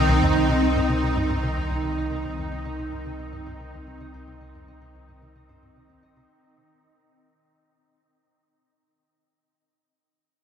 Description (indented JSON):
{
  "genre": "ambient, sequencer-driven space music",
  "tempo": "111 BPM",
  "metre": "4/4",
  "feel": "straight",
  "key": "C minor",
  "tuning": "A4 = 440 Hz",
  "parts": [
    { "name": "evolving wavetable pad", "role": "sustained chords", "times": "0.0-6.3 s", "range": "Eb3 to Eb4", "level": "-25 LUFS", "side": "equal", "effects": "ensemble chorus, built-in reverb" },
    { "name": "Celtic harp", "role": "arpeggios", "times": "0.0-8.9 s", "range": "C4 to Eb5", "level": "-38 LUFS", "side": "equal", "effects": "none" },
    { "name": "tight sequencer bass", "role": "riff", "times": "0.0-6.2 s", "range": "C2 to C3", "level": "-29 LUFS", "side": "equal", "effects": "analog chorus, cassette tape, tape echo" },
    { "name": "warm sub bass", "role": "bass", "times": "0.0-6.3 s", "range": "C2", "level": "-28 LUFS", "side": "equal", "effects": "none" },
    { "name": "wind-like tuned noise texture", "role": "texture", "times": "0.0-6.3 s", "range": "Eb5", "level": "-36 LUFS", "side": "right 1 dB", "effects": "built-in reverb" }
  ],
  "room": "wet huge ambient reverb, RT60 7.3 s",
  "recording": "none",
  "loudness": "-22 LUFS",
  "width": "side -8 dB against mid",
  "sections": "0.0-6.3 A section",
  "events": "fade-out on analog synth bass 0.0-6.3; fade-out 0.0-6.3",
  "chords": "0.0 Cm",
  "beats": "0.35 0.89 1.44 | 1.98 2.52 3.06 3.60 | 4.14 4.68 5.22 5.76"
}